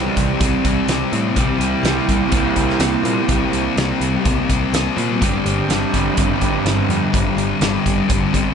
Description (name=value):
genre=rock, shoegaze and dream pop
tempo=125 BPM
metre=4/4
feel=straight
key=C major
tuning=A4 = 441 Hz
part: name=mellow electric guitar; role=arpeggios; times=0.0-8.5 s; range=G3 to C4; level=-27 LUFS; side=right 4 dB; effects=analog chorus, analog delay
part: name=overdriven semi-hollow guitar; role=riff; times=0.0-8.5 s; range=G2 to G4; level=-22 LUFS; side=right 7 dB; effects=reverse reverb
part: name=thick fuzz guitar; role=riff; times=0.0-8.5 s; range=G2 to C4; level=-20 LUFS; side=left 7 dB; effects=distortion, wide subtle chorus
part: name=modern bright picked electric bass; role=bass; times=0.0-8.5 s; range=G1 to Bb2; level=-24 LUFS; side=equal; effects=none
part: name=loose indie drum kit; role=drums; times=0.2-8.5 s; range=hi-hat, kick drum, snare drum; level=-22 LUFS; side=equal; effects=none
room=wet cathedral reverb, RT60 5.7 s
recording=dreamy mix soaked in reverb, nothing above 10.8 kHz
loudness=-15 LUFS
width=side -7 dB against mid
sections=0.0-8.5 A section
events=none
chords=0.0 C; 1.4 C7; 5.2 Gsus4